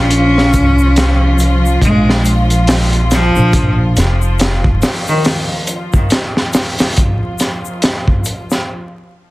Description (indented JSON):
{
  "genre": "trip hop",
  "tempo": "70 BPM",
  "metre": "4/4",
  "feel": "swing 59% on 16ths",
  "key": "Bb minor",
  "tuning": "A4 = 440 Hz",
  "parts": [
    { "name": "rich cello", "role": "melody", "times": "0.0-5.3 s", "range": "Eb3 to Db4", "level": "-16 LUFS", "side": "equal", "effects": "vintage 12-bit sampler grit, dub echo" },
    { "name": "dark studio string section", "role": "sustained chords", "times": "0.0-8.7 s", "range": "F3 to F4", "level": "-21 LUFS", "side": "equal", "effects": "none" },
    { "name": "upright bass", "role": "bass", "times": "0.0-4.8 s", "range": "F1 to C2", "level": "-13 LUFS", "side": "equal", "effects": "none" },
    { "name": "crunchy breakbeat drum kit", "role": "drums", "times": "0.1-8.7 s", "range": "hi-hat, kick drum, snare drum", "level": "-15 LUFS", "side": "equal", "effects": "none" },
    { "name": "egg shaker", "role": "percussion", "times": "0.1-8.6 s", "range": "none", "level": "-30 LUFS", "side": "left 7 dB", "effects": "none" }
  ],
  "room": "small room ambience",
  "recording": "dense, heavily limited modern master, vinyl crackle",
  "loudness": "-11 LUFS",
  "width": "side -19 dB against mid",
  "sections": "0.0-8.7 A section",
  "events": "none",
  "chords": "0.0 Bb5"
}